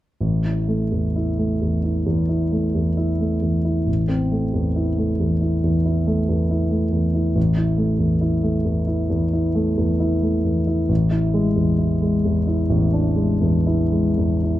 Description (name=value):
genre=classical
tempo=67 BPM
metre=4/4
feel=uneven beats, rubato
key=unclear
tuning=A4 = 437 Hz
part: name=dark grand piano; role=accompaniment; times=0.2-14.6 s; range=A1 to E4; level=-18 LUFS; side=equal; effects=none
room=light reverb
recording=minimal, uncompressed stereo recording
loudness=-18 LUFS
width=side -14 dB against mid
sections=0.2-14.6 A section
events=none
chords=0.2 Am; 7.4 A5; 10.9 E7/A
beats=| 0.21 1.17 2.09 2.99 | 3.88 4.76 5.63 6.50 | 7.37 8.22 9.11 10.01 | 10.90 11.80 12.71 13.68